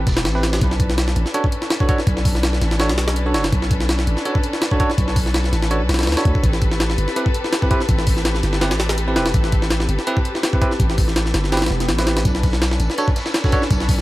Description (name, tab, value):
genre	drum and bass, jungle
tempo	165 BPM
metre	4/4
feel	swing 54% on 16ths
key	unclear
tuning	A4 = 441 Hz
part	dark chamber string section	sustained chords	0.0-14.0 s	C4 to B4	-26 LUFS	left 2 dB	vintage 12-bit sampler grit
part	long sustained 808-style bass	bass	0.0-14.0 s	E1 to D2	-20 LUFS	equal	none
part	crunchy breakbeat drum kit	drums	0.1-0.6, 12.3-14.0 s	hi-hat, snare drum, tambourine	-33 LUFS	right 3 dB	high-pass filter on hats, high-pass filter on snare, high-pass filter on perc, high-pass filter on room
part	jungle sampler-style drum kit	drums	0.1-14.0 s	hi-hat, kick drum, snare drum	-19 LUFS	equal	none
part	bell-like tine electric piano	stabs	0.3-13.6 s	C4 to C#5	-25 LUFS	right 2 dB	dub echo
part	swell	sound effects	11.6-12.3 s	none	-31 LUFS	equal	none
room	small room ambience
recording	vinyl crackle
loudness	-16 LUFS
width	side -17 dB against mid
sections	0.6-14.0 A section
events	drop 0.6-14.0; swell 11.6-12.3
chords	0.0 Am9; 0.6 Bm9; 6.4 Am9; 12.3 Bm9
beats	0.25 | 0.62 0.98 1.34 1.71 | 2.07 2.44 2.80 3.16 | 3.53 3.89 4.25 4.62 | 4.98 5.34 5.71 6.07 | 6.44 6.80 7.16 7.53 | 7.89 8.25 8.62 8.98 | 9.35 9.71 10.07 10.44 | 10.80 11.16 11.53 11.89 | 12.25 12.62 12.98 13.35 | 13.71